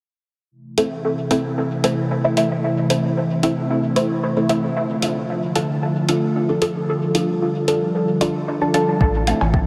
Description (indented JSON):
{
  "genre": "dub techno",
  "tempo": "113 BPM",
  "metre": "4/4",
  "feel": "straight",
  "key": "A minor",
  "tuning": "A4 = 439 Hz",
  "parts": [
    { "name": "airy breathy pad", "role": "sustained chords", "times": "0.5-9.7 s", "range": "C3 to F4", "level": "-24 LUFS", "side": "equal", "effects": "chorus, sidechain pumping" },
    { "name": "filtered dub chord stab", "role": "stabs", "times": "0.8-9.5 s", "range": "A3 to A4", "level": "-23 LUFS", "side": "equal", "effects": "phaser, sidechain pumping, dub echo" },
    { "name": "electronic hi-hat", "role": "drums", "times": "0.8-9.4 s", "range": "none", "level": "-29 LUFS", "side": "equal", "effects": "overdrive" },
    { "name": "warm sub bass", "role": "bass", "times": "9.0-9.7 s", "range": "A1", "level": "-23 LUFS", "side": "equal", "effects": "sidechain pumping" },
    { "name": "electronic kick drum", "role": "drums", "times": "9.0-9.7 s", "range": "none", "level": "-20 LUFS", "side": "equal", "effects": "overdrive" },
    { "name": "woodblock and cowbell", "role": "percussion", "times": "9.0-9.5 s", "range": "none", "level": "-28 LUFS", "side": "equal", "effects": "overdrive, sidechain pumping on perc" }
  ],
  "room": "wet huge ambient reverb, RT60 7.3 s",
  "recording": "dreamy mix soaked in reverb",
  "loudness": "-20 LUFS",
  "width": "mono",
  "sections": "0.5-9.7 A section",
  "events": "filter sweep on analog synth pad 0.5-9.7",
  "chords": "0.5 Am; 4.8 Dm; 9.0 Am"
}